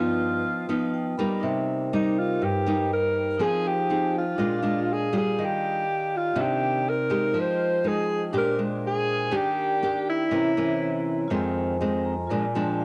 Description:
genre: bossa nova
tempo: 122 BPM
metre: 4/4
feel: straight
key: unclear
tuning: A4 = 440 Hz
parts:
  - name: breathy alto saxophone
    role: melody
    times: 0.0-11.3 s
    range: Eb4 to C5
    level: -28 LUFS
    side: equal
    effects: cassette tape, tape echo
  - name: nylon-string guitar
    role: accompaniment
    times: 0.0-12.8 s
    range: F2 to Ab4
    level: -29 LUFS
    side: equal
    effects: cassette tape
  - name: vibraphone with medium hard mallets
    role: accompaniment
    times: 0.0-12.8 s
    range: D4 to Eb6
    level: -34 LUFS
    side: equal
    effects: cassette tape
room: moderate small room reverb, RT60 0.6 s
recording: home recording on cassette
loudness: -25 LUFS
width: mono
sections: 0.0-12.8 A section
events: vibraphone fill 0.7-1.4, 11.8-12.8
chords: 0.0 G7b13; 1.4 Cm7; 3.4 Fm7; 4.4 Bb7; 5.4 Ebmaj9; 6.4 Cm9; 7.4 Fm9; 8.3 Bb13; 9.3 Ebmaj7; 10.3 C7b9; 11.3 Fm7; 12.3 Bb7

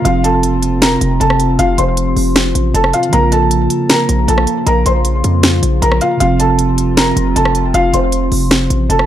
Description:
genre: hip hop, trap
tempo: 156 BPM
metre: 4/4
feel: half-time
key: unclear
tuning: A4 = 441 Hz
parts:
  - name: felt-muted upright piano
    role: melody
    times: 0.0-9.1 s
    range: F4 to C6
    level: -16 LUFS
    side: equal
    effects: low-pass filter, ping-pong delay
  - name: mellow tine electric piano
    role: accompaniment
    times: 0.0-9.1 s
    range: C3 to F4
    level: -18 LUFS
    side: right 4 dB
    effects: low-pass filter
  - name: dark analog pad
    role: sustained chords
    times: 0.0-9.1 s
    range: C3 to F4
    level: -20 LUFS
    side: left 2 dB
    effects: chorus, phaser
  - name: hard-hitting 808-style bass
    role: bass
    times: 0.0-9.1 s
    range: F1 to F2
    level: -16 LUFS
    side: equal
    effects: none
  - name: trap drum kit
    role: drums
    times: 0.1-9.1 s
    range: hi-hat, rim click, snare drum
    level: -16 LUFS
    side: equal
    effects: none
room: little or no reverb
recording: dark, warm production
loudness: -11 LUFS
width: side -11 dB against mid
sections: 0.0-9.1 A section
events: none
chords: 0.1 F; 3.1 Bbm; 6.2 F

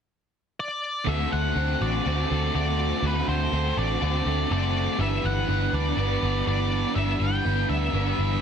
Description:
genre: rock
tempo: 122 BPM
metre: 4/4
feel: straight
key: D mixolydian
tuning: A4 = 439 Hz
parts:
  - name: octave-fuzz lead guitar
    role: melody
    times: 0.6-8.4 s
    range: B4 to G5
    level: -29 LUFS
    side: left 1 dB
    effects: distortion, slapback echo
  - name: overdriven electric guitar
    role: riff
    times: 1.0-8.4 s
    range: D3 to B4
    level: -30 LUFS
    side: right 13 dB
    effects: reverse reverb
  - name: direct-recorded clean electric guitar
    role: arpeggios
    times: 1.1-8.4 s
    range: E3 to F#4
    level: -35 LUFS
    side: right 12 dB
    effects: lush chorus, slapback echo
  - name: overdriven electric guitar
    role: riff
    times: 1.1-8.4 s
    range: D3 to C5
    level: -30 LUFS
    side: left 13 dB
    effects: analog chorus
  - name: vintage muted picked electric bass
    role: bass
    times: 1.1-8.4 s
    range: F#1 to D2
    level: -26 LUFS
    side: equal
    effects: none
room: digital ambience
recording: dense, heavily limited modern master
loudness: -23 LUFS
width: side -7 dB against mid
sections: 0.0-1.1 A section; 1.1-8.4 B section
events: none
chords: 0.0 N.C.; 1.1 D7; 5.0 G6

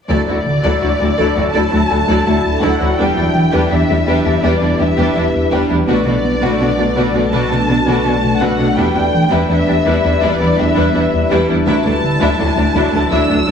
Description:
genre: cinematic, hybrid orchestral and electronic film score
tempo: 83 BPM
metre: 4/4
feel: straight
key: E minor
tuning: A4 = 439 Hz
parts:
  - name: dark symphonic violin section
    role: melody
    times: 0.1-13.5 s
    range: D5 to E6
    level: -20 LUFS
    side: left 2 dB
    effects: none
  - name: rich symphonic violin section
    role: second line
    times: 0.1-13.5 s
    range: A3 to E5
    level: -21 LUFS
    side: left 3 dB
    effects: none
  - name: clear symphonic viola section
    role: accompaniment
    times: 0.1-13.5 s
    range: F#3 to E4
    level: -20 LUFS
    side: right 1 dB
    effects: none
  - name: analog drone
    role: sustained chords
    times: 0.6-13.5 s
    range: F#3 to B4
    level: -19 LUFS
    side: equal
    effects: chorus
  - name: round analog bass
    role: riff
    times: 0.1-13.5 s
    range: D2 to B3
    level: -20 LUFS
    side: left 1 dB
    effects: none
  - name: pure sine sub bass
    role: bass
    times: 0.1-13.5 s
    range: D1 to B1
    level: -27 LUFS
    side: equal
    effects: none
  - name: rich symphonic cello section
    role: bass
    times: 0.1-13.5 s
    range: D2 to B2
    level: -20 LUFS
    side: right 2 dB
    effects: none
  - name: taiko ensemble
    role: drums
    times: 0.1-1.5, 5.9-7.3, 11.7-13.5 s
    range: none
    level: -26 LUFS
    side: equal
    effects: none
room: moderate scoring stage reverb, RT60 1.8 s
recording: heavily compressed radio sound, multiband compression, small room ambience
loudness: -12 LUFS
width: side -7 dB against mid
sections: 0.1-13.5 A section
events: none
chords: 0.1 Dadd9; 3.0 Em7; 5.9 Bm7; 8.8 Em7; 11.7 Dadd9

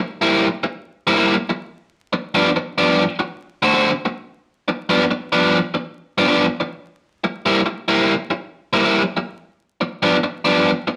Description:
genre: blues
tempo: 94 BPM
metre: 4/4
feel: swing 68% on 8ths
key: G mixolydian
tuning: A4 = 440 Hz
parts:
  - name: biting overdriven guitar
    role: solo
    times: 0.0-10.9 s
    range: G2 to F#4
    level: -18 LUFS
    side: equal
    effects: none
room: moderate studio reverb, RT60 0.7 s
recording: vinyl crackle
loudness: -19 LUFS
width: mono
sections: 0.0-4.5 A section; 4.5-11.0 B section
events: none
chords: 0.0 C7; 1.9 G7; 3.2 D7; 4.5 G7; 7.0 C7; 9.6 G7

